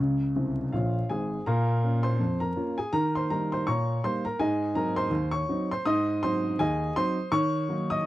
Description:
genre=ragtime piano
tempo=82 BPM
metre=2/4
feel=swing 58% on 16ths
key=unclear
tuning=A4 = 441 Hz
part: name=dark upright piano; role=solo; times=0.0-8.1 s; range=Ab1 to Eb6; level=-25 LUFS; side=equal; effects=none
room=moderate small room reverb, RT60 0.6 s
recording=dry, close 1970s-style studio recording, vinyl crackle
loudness=-25 LUFS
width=side -15 dB against mid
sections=0.0-1.5 A section; 1.5-8.1 B section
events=upright piano fill 0.4-1.5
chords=0.0 Db; 1.5 Bbm; 2.9 Eb7; 4.4 Ab7; 7.3 D#m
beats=0.72 | 1.46 2.19 | 2.93 3.66 | 4.39 5.12 | 5.85 6.58 | 7.31 8.04

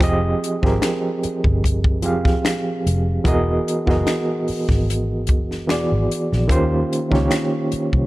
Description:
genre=R&B, neo-soul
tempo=74 BPM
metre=4/4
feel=swing 54% on 16ths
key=unclear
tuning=A4 = 439 Hz
part: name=overdriven reed electric piano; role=accompaniment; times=0.0-8.1 s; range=Eb3 to G5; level=-20 LUFS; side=right 1 dB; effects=fast tremolo
part: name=vintage muted fingered electric bass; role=bass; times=0.0-8.1 s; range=E1 to Eb2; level=-22 LUFS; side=equal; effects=none
part: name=compact cocktail drum kit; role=drums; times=0.0-8.1 s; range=finger snaps, hi-hat, kick drum, snare drum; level=-21 LUFS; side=equal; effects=none
room=light reverb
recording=none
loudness=-17 LUFS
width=side -18 dB against mid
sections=0.0-8.1 A section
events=none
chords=0.0 Fm7; 3.3 Emaj9#11; 5.7 E9; 6.5 Eb13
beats=| 0.01 0.82 1.63 2.44 | 3.25 4.07 4.88 5.69 | 6.50 7.31

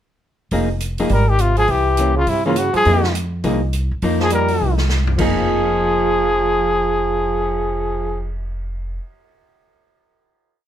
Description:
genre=jazz, small-group swing and bop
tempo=206 BPM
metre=4/4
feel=swing 61% on 8ths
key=F minor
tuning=A4 = 440 Hz
part: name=hollow-body jazz guitar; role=accompaniment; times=0.5-9.0 s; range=E3 to Ab4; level=-22 LUFS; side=left 2 dB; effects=none
part: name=upright bass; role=bass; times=0.5-9.0 s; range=F1 to G2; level=-21 LUFS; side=equal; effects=none
part: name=swinging big-band drum kit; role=drums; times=0.5-7.4 s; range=crash cymbal, cymbal swell, hi-hat, kick drum, snare drum, toms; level=-28 LUFS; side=right 1 dB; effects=none
part: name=breathy trumpet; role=melody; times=1.1-8.3 s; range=E4 to Bb4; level=-18 LUFS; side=left 1 dB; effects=none
part: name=bright trombone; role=second line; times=1.1-8.3 s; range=C3 to G3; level=-24 LUFS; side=right 4 dB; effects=none
room=light reverb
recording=none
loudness=-16 LUFS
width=side -10 dB against mid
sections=0.5-5.2 A section; 5.2-7.5 final chord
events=drum fill 4.6-5.2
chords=0.5 Fm7; 1.7 C7b9; 2.9 Fm11; 5.2 Fm7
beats=| 0.52 0.81 1.10 1.40 | 1.69 1.98 2.27 2.56 | 2.85 3.15 3.44 3.73 | 4.02 4.32 4.61 4.90 | 5.19 5.48 5.77 6.06 | 6.35 6.64 6.93 7.22

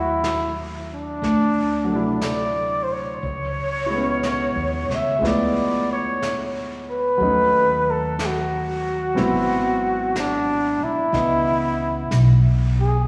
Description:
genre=jazz ballad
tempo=61 BPM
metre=4/4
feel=swing 68% on 8ths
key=C# minor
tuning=A4 = 440 Hz
part: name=warm flugelhorn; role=melody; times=0.0-13.1 s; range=D4 to E5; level=-24 LUFS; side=equal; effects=slapback echo
part: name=warm baby grand piano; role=accompaniment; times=0.0-13.1 s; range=C3 to D#5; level=-29 LUFS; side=equal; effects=slapback echo
part: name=upright bass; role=bass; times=0.0-13.1 s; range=G#1 to D#2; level=-26 LUFS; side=equal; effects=none
part: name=vintage brush drum kit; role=drums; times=0.2-13.1 s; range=brushed snare drum, hi-hat, snare drum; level=-37 LUFS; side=equal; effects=slapback echo
room=light reverb, small room ambience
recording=live gig heard through the venue's PA, recital hall reverb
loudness=-21 LUFS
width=mono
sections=0.0-13.1 A section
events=none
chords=0.0 D#m7b5; 1.2 D9; 3.2 C#m9; 5.2 Ddim7; 7.2 D#m7b5; 9.2 G#7alt; 11.1 C#m9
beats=0.23 1.22 2.22 | 3.22 4.22 5.22 6.21 | 7.20 8.19 9.17 10.15 | 11.13 12.11

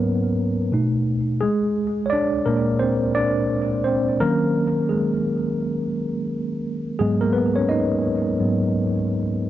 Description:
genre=hip hop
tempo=86 BPM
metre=4/4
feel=swing 63% on 16ths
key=unclear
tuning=A4 = 440 Hz
part: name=mellow tine electric piano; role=solo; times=0.0-9.5 s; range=G#2 to D#5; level=-19 LUFS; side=equal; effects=medium stereo tremolo, low-pass filter, tape echo
room=moderate plate reverb, RT60 3.3 s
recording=cassette tape, nothing above 7.8 kHz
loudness=-19 LUFS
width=side -13 dB against mid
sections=0.0-9.5 A section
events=tine electric piano solo 0.0-9.5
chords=0.0 G#m9; 0.7 B7; 1.4 A#7; 4.2 D#m7; 7.0 G#m9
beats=0.02 0.72 | 1.42 2.12 2.81 3.51 | 4.21 4.91 5.60 6.30 | 7.00 7.70 8.39 9.09

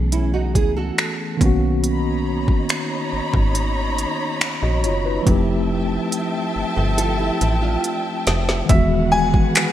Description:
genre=contemporary R&B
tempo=70 BPM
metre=4/4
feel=straight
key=unclear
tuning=A4 = 440 Hz
part: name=mellow tine electric piano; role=accompaniment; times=0.0-9.7 s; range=D#3 to D#5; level=-23 LUFS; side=left 1 dB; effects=medium stereo tremolo
part: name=slap-like FM bass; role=bass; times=0.0-9.4 s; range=E1 to C#2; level=-22 LUFS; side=equal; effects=none
part: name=nylon-string guitar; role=arpeggios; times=0.1-1.4, 6.8-8.7 s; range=C4 to C5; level=-27 LUFS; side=right 6 dB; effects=ensemble chorus, digital delay
part: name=smooth R&B drum kit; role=drums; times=0.1-9.7 s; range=finger snaps, handclaps, hi-hat, kick drum, snare drum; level=-19 LUFS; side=equal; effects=overdrive, gated reverb
part: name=warm studio string section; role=sustained chords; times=1.8-9.7 s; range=F3 to B5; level=-26 LUFS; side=left 1 dB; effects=sidechain pumping
part: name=clear baby grand piano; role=melody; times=8.7-9.7 s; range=E5 to G#5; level=-21 LUFS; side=left 2 dB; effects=none
part: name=glassy synth bell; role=texture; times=9.1-9.7 s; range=G#5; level=-32 LUFS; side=left 2 dB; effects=chorus, digital delay
room=light reverb, studio reverb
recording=bright 1980s-style digital production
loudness=-17 LUFS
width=side -12 dB against mid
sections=0.0-8.7 A section; 8.7-9.7 B section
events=drum fill 5.3-8.7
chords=0.0 Amaj9; 1.4 Bmaj9; 5.3 Fmaj9; 8.7 Emaj9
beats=0.12 0.98 | 1.84 2.69 3.55 4.41 | 5.27 6.12 6.98 7.84 | 8.70 9.55

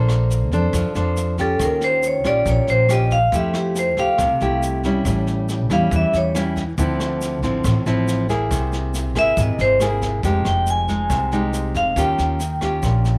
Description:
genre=bossa nova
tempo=139 BPM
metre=4/4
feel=straight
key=unclear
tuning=A4 = 438 Hz
part: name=nylon-string guitar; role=accompaniment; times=0.0-13.2 s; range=A2 to C5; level=-25 LUFS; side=equal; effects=none
part: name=upright bass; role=bass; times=0.0-13.2 s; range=F1 to F2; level=-24 LUFS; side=equal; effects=none
part: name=jazz brush drum kit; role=drums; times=0.1-13.1 s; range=kick drum, rim click, snare drum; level=-32 LUFS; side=equal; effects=none
part: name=tube shaker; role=percussion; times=0.1-13.2 s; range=none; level=-40 LUFS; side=equal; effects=none
part: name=vibraphone with medium hard mallets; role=melody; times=1.4-6.4, 9.2-12.6 s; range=G4 to Ab5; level=-22 LUFS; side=equal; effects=none
room=light reverb, small room ambience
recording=none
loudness=-20 LUFS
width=mono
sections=0.0-10.2 A section; 10.2-13.2 A section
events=vibraphone solo 0.0-13.2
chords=0.0 Bbmaj9; 1.6 Eb9; 3.3 Fmaj9; 5.1 A7; 6.8 Dm9; 8.5 Caug7; 10.2 Fm9; 12.0 Eb9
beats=0.30 0.74 1.17 | 1.60 2.03 2.46 2.90 | 3.33 3.76 4.19 4.62 | 5.05 5.49 5.92 6.35 | 6.78 7.21 7.64 8.08 | 8.51 8.94 9.37 9.80 | 10.24 10.67 11.10 11.53 | 11.96 12.40 12.83

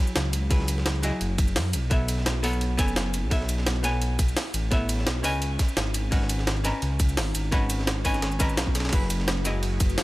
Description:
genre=liquid drum and bass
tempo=171 BPM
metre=4/4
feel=swing 54% on 16ths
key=F# dorian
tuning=A4 = 437 Hz
part: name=archtop guitar, miked and amplified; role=accompaniment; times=0.0-10.0 s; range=F#3 to A#5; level=-30 LUFS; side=equal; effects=tape echo
part: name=jungle sampler-style drum kit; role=drums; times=0.1-10.0 s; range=cabasa, crash cymbal, hi-hat, ride cymbal, snare drum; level=-30 LUFS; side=equal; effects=none
part: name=dark detuned saw bass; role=bass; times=0.2-10.0 s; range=F#1 to F#2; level=-27 LUFS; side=equal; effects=none
part: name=breakbeat sampler-style drum kit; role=drums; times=0.2-10.0 s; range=hi-hat, ride cymbal, snare drum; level=-35 LUFS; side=right 1 dB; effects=high-pass filter on cymbals, high-pass filter on snare, high-pass filter on hats
part: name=electronic kick drum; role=drums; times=0.5-9.9 s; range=none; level=-24 LUFS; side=equal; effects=none
part: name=glassy FM pad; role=sustained chords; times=9.2-10.0 s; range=G#3 to B4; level=-39 LUFS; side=left 1 dB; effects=ensemble chorus, built-in reverb, sidechain pumping
room=little or no reverb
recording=none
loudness=-23 LUFS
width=side -19 dB against mid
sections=0.0-10.0 A section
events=none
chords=0.0 F#9sus4; 1.9 B9sus4; 5.4 C#9sus4; 8.9 F#9sus4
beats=0.16 | 0.51 0.86 1.21 1.56 | 1.91 2.26 2.61 2.96 | 3.31 3.67 4.02 4.37 | 4.72 5.07 5.42 5.77 | 6.12 6.47 6.82 7.17 | 7.53 7.88 8.23 8.58 | 8.93 9.28 9.63 9.98

